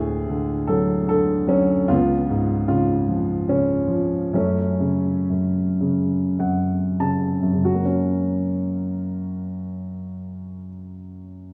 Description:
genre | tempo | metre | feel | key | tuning
classical, lyrical solo piano | 46-78 BPM | 3/4 | rubato | F# minor | A4 = 440 Hz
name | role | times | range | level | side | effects
dark concert grand piano | solo | 0.0-11.5 s | C#2 to A5 | -22 LUFS | equal | none
room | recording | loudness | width
wet recital hall reverb, RT60 1.7 s | dark, warm production | -22 LUFS | mono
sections
0.0-7.6 A section; 7.6-11.3 B section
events
slowing down 1.9-7.6; grand piano fill 5.8-7.6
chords
0.0 Dadd9; 1.9 C#7; 4.3 F#m; 7.6 F#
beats
0.29 1.08 | 1.89 2.69 3.48 | 4.35 5.31 6.39 | 7.64 8.91 10.12

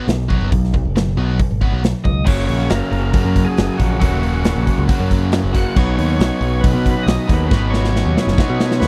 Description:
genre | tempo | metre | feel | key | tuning
classic rock | 137 BPM | 4/4 | straight | unclear | A4 = 441 Hz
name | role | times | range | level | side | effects
biting overdriven guitar | riff | 0.0-8.9 s | F#2 to B3 | -26 LUFS | equal | none
modern bright picked electric bass | bass | 0.1-8.9 s | D#1 to B2 | -21 LUFS | equal | none
big rock drum kit | drums | 0.1-8.9 s | crash cymbal, hi-hat, kick drum, snare drum | -21 LUFS | equal | none
overdriven tonewheel organ | melody | 2.0-8.9 s | F#4 to F#5 | -29 LUFS | equal | slow rotary speaker
overdriven electric guitar | riff | 2.2-8.9 s | F#2 to B4 | -26 LUFS | equal | none
tonewheel organ | sustained chords | 2.3-8.9 s | A#3 to B4 | -35 LUFS | equal | none
room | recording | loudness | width
little or no reverb | dry, close 1970s-style studio recording | -17 LUFS | mono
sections
0.0-2.3 A section; 2.3-8.9 B section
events
drum fill 7.5-8.9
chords
0.0 B5; 2.3 F#add9; 5.8 Badd9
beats
0.08 | 0.52 0.95 1.39 1.83 | 2.27 2.71 3.14 3.58 | 4.02 4.46 4.89 5.33 | 5.76 6.20 6.64 7.07 | 7.51 7.94 8.38 8.81

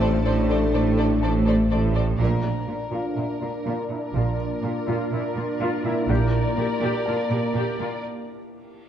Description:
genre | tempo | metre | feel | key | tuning
cinematic, hybrid orchestral and electronic film score | 123 BPM | 4/4 | straight | unclear | A4 = 442 Hz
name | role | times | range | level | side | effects
warm symphonic violin section | melody | 0.0-8.0 s | D5 | -33 LUFS | left 4 dB | low-pass filter
warm symphonic violin section | second line | 0.0-8.0 s | A4 to C5 | -32 LUFS | left 2 dB | none
rich studio viola section | accompaniment | 0.0-7.9 s | F3 to G4 | -32 LUFS | right 1 dB | low-pass filter
mellow French horn section | sustained chords | 0.0-1.9 s | A3 to D4 | -27 LUFS | left 6 dB | low-pass filter
organ-like drone | sustained chords | 0.0-8.0 s | A3 to C5 | -28 LUFS | equal | ensemble chorus, built-in reverb, low-pass filter
mellow tuba | bass | 0.0-2.1 s | A1 | -26 LUFS | right 2 dB | none
pure sine sub bass | bass | 0.0-2.2 s | A1 | -26 LUFS | equal | none
rich symphonic cello section | bass | 0.0-7.9 s | A2 to Bb2 | -28 LUFS | right 3 dB | none
felt-muted upright piano | texture | 0.0-8.9 s | E4 to A5 | -36 LUFS | left 2 dB | ping-pong delay
rich symphonic double bass section | bass | 2.2-6.3 s | Bb1 | -25 LUFS | right 3 dB | none
reverse cymbal | sound effects | 8.5-8.9 s | none | -60 LUFS | right 1 dB | none
room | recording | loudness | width
moderate scoring stage reverb, RT60 1.5 s | worn, warbling old tape, cassette tape, warbly pitch drift | -21 LUFS | side -10 dB against mid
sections
0.0-2.2 A section; 2.2-8.9 B section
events
band accent 2.2-2.7; filter sweep 2.2-8.9; break 8.0-8.9; reverse cymbal 8.5-8.9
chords
0.0 D7(no3)/A; 2.2 Bb; 6.1 Gm/Bb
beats
| 0.24 0.73 1.22 1.71 | 2.19 2.68 3.17 3.66 | 4.14 4.63 5.12 5.61 | 6.09 6.58 7.07 7.56 | 8.05 8.53

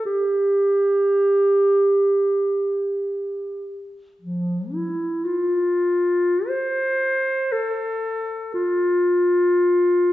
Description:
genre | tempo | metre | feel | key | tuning
classical, free, expressive piece for unaccompanied clarinet | free time | none | none | F major | A4 = 445 Hz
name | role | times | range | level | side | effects
mellow clarinet | solo | 0.0-10.1 s | F3 to C5 | -18 LUFS | equal | none
room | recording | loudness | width
wet recital hall reverb, RT60 1.6 s | heard from further back in the room, nothing above 7.8 kHz | -18 LUFS | side -15 dB against mid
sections
0.0-10.1 A section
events
none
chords
none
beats
free time

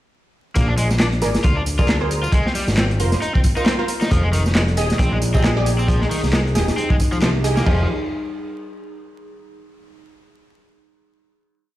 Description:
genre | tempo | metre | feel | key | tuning
breakbeat, breaks | 135 BPM | 4/4 | swing 57% on 16ths | F dorian | A4 = 440 Hz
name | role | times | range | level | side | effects
cranked stack guitar | riff | 0.6-7.9 s | Eb3 to F4 | -25 LUFS | left 1 dB | overdrive, ping-pong delay
fat analog bass | bass | 0.6-7.9 s | Eb1 to D2 | -20 LUFS | equal | none
crunchy breakbeat drum kit | drums | 0.6-7.8 s | crash cymbal, hi-hat, kick drum, snare drum | -19 LUFS | equal | none
garage drum kit | drums | 0.6-7.6 s | handclaps, hi-hat, tambourine | -29 LUFS | right 1 dB | overdrive
orchestra-hit-like synth stab | stabs | 1.2-7.8 s | F4 to Eb5 | -26 LUFS | right 1 dB | built-in reverb, ping-pong delay
warbly tape-like pad | sustained chords | 4.8-7.9 s | Eb4 to Ab4 | -29 LUFS | left 1 dB | chorus, built-in reverb, sidechain pumping
room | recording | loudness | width
little or no reverb | played on a big sound system in a bare room, stone room reverb, vinyl crackle | -16 LUFS | side -15 dB against mid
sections
0.6-7.7 drop; 7.7-9.4 final chord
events
drop 0.6-7.7; band accent 7.2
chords
0.6 Bb7; 2.3 Ab69; 4.1 Fm9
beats
| 0.55 1.00 1.44 1.89 | 2.33 2.78 3.22 3.67 | 4.11 4.55 5.00 5.44 | 5.89 6.33 6.78 7.22 | 7.67

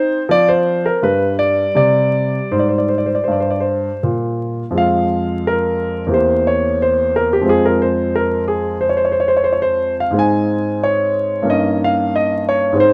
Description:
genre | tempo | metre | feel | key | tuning
classical, baroque-style suite movement for grand piano | 78-92 BPM | 4/4 | rubato | F minor from 4.8 s | A4 = 441 Hz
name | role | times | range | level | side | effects
clear grand piano | solo | 0.0-12.9 s | E2 to Ab5 | -16 LUFS | equal | none
room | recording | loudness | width
light reverb | close, detailed microphones, vinyl crackle | -16 LUFS | mono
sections
0.0-4.8 A section; 4.8-12.9 A section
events
none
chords
0.3 F5; 1.0 N.C.; 1.8 C5; 4.8 Fm; 6.1 C7/E; 7.5 Fm; 10.2 Ab; 11.5 Eb7/G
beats
0.30 1.02 | 1.76 2.52 3.28 4.03 | 4.77 5.45 6.13 6.80 | 7.47 8.13 8.81 9.49 | 10.16 10.82 11.48 12.14 | 12.80

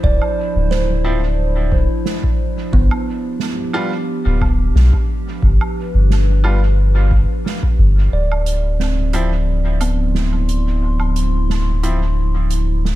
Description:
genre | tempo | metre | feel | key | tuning
ambient dub | 89 BPM | 4/4 | swing 54% on 16ths | D dorian | A4 = 440 Hz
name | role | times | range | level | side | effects
warbly tape-like pad | sustained chords | 0.0-13.0 s | F3 to C6 | -25 LUFS | equal | chorus, built-in reverb
kalimba | arpeggios | 0.0-12.1 s | B3 to D5 | -26 LUFS | right 4 dB | low-pass filter, tape echo
soft dub sub bass | bass | 0.0-13.0 s | D1 to B1 | -15 LUFS | equal | none
electronic kick drum | drums | 0.0-7.8 s | none | -19 LUFS | equal | none
soft-mallet drum kit | drums | 0.2-13.0 s | hi-hat, snare drum, woodblock | -28 LUFS | right 4 dB | dub echo
bright upright piano | stabs | 1.0-12.0 s | F3 to F4 | -27 LUFS | equal | dub echo
room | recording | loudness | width
little or no reverb | none | -14 LUFS | side -15 dB against mid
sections
0.0-8.1 A section; 8.1-13.0 B section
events
filter sweep on kalimba 8.1-13.0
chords
0.0 Dm9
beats
| 0.04 0.71 1.38 2.06 | 2.73 3.41 4.08 4.75 | 5.43 6.10 6.78 7.45 | 8.12 8.80 9.47 10.15 | 10.82 11.50 12.17 12.84

